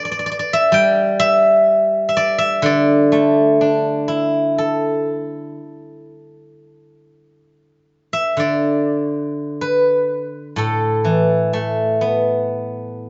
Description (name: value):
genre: chinese traditional, Chinese solo plucked strings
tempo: 58-66 BPM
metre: 4/4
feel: rubato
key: D zhi mode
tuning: A4 = 440 Hz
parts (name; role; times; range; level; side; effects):
- steel-string zither; solo; 0.0-13.1 s; A2 to G5; -18 LUFS; equal; none
room: wet stone room reverb, RT60 1.3 s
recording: band playing live in one room, nothing above 7.7 kHz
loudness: -17 LUFS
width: mono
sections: 0.0-6.6 A section; 6.6-13.1 B section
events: none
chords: none